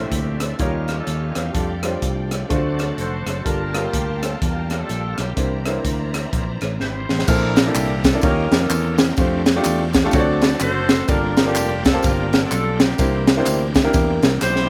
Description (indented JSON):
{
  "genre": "uptempo gospel",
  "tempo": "126 BPM",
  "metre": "4/4",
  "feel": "swing 61% on 8ths",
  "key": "unclear",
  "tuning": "A4 = 440 Hz",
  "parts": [
    { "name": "warm horn section", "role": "melody", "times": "0.0-14.7 s", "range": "Bb3 to C5", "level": "-30 LUFS", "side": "equal", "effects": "none" },
    { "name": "clear concert grand piano", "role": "accompaniment", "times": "0.0-14.3 s", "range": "G2 to A5", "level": "-25 LUFS", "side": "equal", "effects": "slapback echo" },
    { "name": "bright tonewheel organ", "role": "sustained chords", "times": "0.0-14.7 s", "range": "D3 to Bb4", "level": "-34 LUFS", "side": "equal", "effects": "none" },
    { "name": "warm studio string section", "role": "sustained chords", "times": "0.0-7.3 s", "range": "Bb3 to Bb5", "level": "-38 LUFS", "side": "equal", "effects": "none" },
    { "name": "fingered electric bass", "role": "bass", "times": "0.0-14.7 s", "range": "F1 to F2", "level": "-26 LUFS", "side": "equal", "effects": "none" },
    { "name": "crisp fusion drum kit", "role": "drums", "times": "0.1-14.7 s", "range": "crash cymbal, hi-hat, kick drum, ride cymbal, rim click, snare drum", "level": "-22 LUFS", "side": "equal", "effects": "none" },
    { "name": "tambourine and handclaps", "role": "percussion", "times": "7.3-14.6 s", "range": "none", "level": "-33 LUFS", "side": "equal", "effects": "none" }
  ],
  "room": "little or no reverb",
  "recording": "none",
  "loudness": "-19 LUFS",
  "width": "mono",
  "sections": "0.0-7.3 A section; 7.3-14.7 B section",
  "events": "drum fill 6.8-7.3, 14.4",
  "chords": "0.0 Bbmaj9#11; 0.6 Eb9; 1.5 F69; 2.5 D7; 3.5 Gm9; 5.4 C9; 7.3 Bbmaj9#11; 8.2 Eb9; 9.2 F69; 10.1 D7; 11.1 Gm9; 13.0 C9"
}